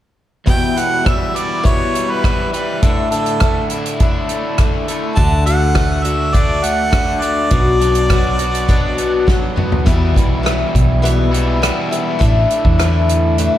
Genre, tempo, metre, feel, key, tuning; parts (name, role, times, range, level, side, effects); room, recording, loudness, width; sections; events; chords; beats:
folk rock and heartland rock; 102 BPM; 4/4; straight; A4 = 440 Hz
warm harmonica; melody; 0.5-9.3 s; A4 to A5; -19 LUFS; right 2 dB; slapback echo
picked swing-style acoustic guitar; accompaniment; 0.5-13.6 s; E2 to F#4; -20 LUFS; left 4 dB; slapback echo
crunchy overdriven guitar; riff; 0.5-13.6 s; E2 to F#4; -22 LUFS; right 1 dB
natural country drum kit; drums; 0.5-13.5 s; hi-hat, kick drum, rim click, snare drum, toms; -16 LUFS; equal
hollow-body short-scale picked electric bass; bass; 5.2-13.5 s; A1 to E2; -18 LUFS; equal
moderate lush hall reverb, RT60 1.8 s, small room ambience; big arena sound; -13 LUFS; side -12 dB against mid
0.5-9.9 A section; 9.9-13.6 B section
drum fill 9.3-9.9
0.5 Em; 2.8 Asus4; 5.2 D; 7.5 Bm; 9.9 Em; 12.2 Asus4
| 0.47 1.06 1.65 2.24 | 2.82 3.41 4.00 4.58 | 5.17 5.75 6.34 6.93 | 7.51 8.10 8.69 9.27 | 9.86 10.44 11.03 11.62 | 12.21 12.79 13.38